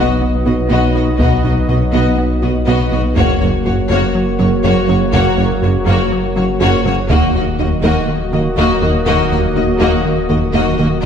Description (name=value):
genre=cinematic, hybrid orchestral and electronic film score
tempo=122 BPM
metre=4/4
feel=straight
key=Eb minor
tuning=A4 = 441 Hz
part: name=rich symphonic violin section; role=melody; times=0.0-11.1 s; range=Db5 to D#5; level=-24 LUFS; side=left 5 dB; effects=none
part: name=warm symphonic violin section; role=second line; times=0.0-11.1 s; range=F#4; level=-22 LUFS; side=left 5 dB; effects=none
part: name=warm symphonic viola section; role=accompaniment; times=0.0-11.1 s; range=Bb3 to B3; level=-22 LUFS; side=right 3 dB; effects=none
part: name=dark French horn section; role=sustained chords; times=0.0-11.1 s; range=Bb3 to Gb4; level=-22 LUFS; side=left 3 dB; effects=none
part: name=sweeping resonant pad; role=sustained chords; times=0.0-11.1 s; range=F#3 to D#5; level=-22 LUFS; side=equal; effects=chorus
part: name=resonant blip pluck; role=arpeggios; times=0.0-11.1 s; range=Eb3 to B4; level=-24 LUFS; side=equal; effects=none
part: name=rubbery square bass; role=riff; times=0.0-11.1 s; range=Eb2 to B3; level=-20 LUFS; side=right 1 dB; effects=none
part: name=pure sine sub bass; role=bass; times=0.0-11.1 s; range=Eb1 to B1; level=-22 LUFS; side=equal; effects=none
part: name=rich symphonic cello section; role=bass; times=0.0-10.9 s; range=Eb2 to B2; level=-23 LUFS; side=right 2 dB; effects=none
part: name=warm symphonic double bass section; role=bass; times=0.0-11.1 s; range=Gb1 to Eb2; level=-23 LUFS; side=right 2 dB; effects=none
part: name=warm tuba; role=bass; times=0.0-10.9 s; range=Gb1 to Eb2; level=-23 LUFS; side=right 3 dB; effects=none
part: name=impact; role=sound effects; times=0.0-1.2 s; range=none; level=-34 LUFS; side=equal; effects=none
part: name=taiko ensemble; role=drums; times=1.2-11.1 s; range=none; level=-20 LUFS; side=left 1 dB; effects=none
room=wet scoring stage reverb, RT60 1.6 s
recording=heard from further back in the room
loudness=-12 LUFS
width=side -7 dB against mid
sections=0.0-11.1 A section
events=impact 0.0-1.2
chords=0.0 B; 3.2 Gb; 7.1 Ebm